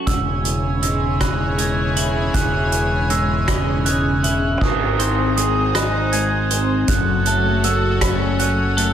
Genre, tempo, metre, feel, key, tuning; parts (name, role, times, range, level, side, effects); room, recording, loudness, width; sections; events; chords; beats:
post-rock; 53 BPM (dotted quarters); 6/8; straight; C# harmonic minor; A4 = 441 Hz
twelve-string electric guitar; arpeggios; 0.0-8.9 s; C#2 to E4; -22 LUFS; left 2 dB; phaser, slapback echo
clear studio string section; sustained chords; 0.1-8.9 s; E3 to G#5; -26 LUFS; left 2 dB
glockenspiel with rubber mallets; arpeggios; 0.1-8.9 s; D#6 to G#6; -23 LUFS; right 4 dB; slapback echo
growling fingered electric bass; bass; 0.1-8.9 s; E1 to G#1; -22 LUFS; equal; overdrive
soft-mallet drum kit; drums; 0.1-8.9 s; crash cymbal, hi-hat, kick drum, rim click; -22 LUFS; right 1 dB
moderate concert hall reverb, RT60 2.2 s; big arena sound; -16 LUFS; side -9 dB against mid
0.0-4.6 A section; 4.6-8.9 B section
0.1 C#m/E; 4.6 G#; 6.9 F#m
| 0.08 1.21 | 2.35 3.48 | 4.62 5.75 | 6.89 8.02